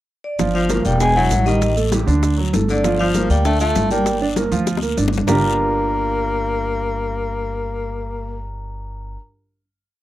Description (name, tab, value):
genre	Afro-Cuban jazz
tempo	197 BPM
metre	4/4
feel	straight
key	G minor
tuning	A4 = 439 Hz
part	vibraphone with medium hard mallets	melody	0.2-9.1 s	D5 to Bb5	-23 LUFS	equal	none
part	warm grand piano	accompaniment	0.4-9.2 s	D3 to F5	-22 LUFS	right 5 dB	none
part	upright bass	bass	0.4-9.1 s	E1 to D2	-22 LUFS	equal	none
part	bongos	percussion	0.4-5.3 s	none	-26 LUFS	left 6 dB	none
part	congas	percussion	0.4-5.3 s	none	-25 LUFS	left 1 dB	none
part	guiro	percussion	0.4-5.3 s	none	-34 LUFS	left 8 dB	none
part	maracas	percussion	0.4-5.3 s	none	-33 LUFS	right 9 dB	none
part	breathy tenor saxophone	second line	0.5-8.5 s	D3 to Bb3	-23 LUFS	left 4 dB	none
room	light reverb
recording	dry, close 1970s-style studio recording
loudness	-16 LUFS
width	side -14 dB against mid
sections	0.0-0.4 pickup bar; 0.4-5.3 A section; 5.3-7.7 final chord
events	drum fill 4.7-5.3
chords	0.4 Gm7; 1.0 E5; 1.6 Ebmaj7#11/A; 2.2 D; 2.8 Gm7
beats	0.09 | 0.39 0.70 1.00 1.31 | 1.62 1.92 2.23 2.54 | 2.84 3.15 3.45 3.75 | 4.06 4.36 4.67 4.97 | 5.27 5.58 5.88 6.18 | 6.48 6.78 7.08 7.39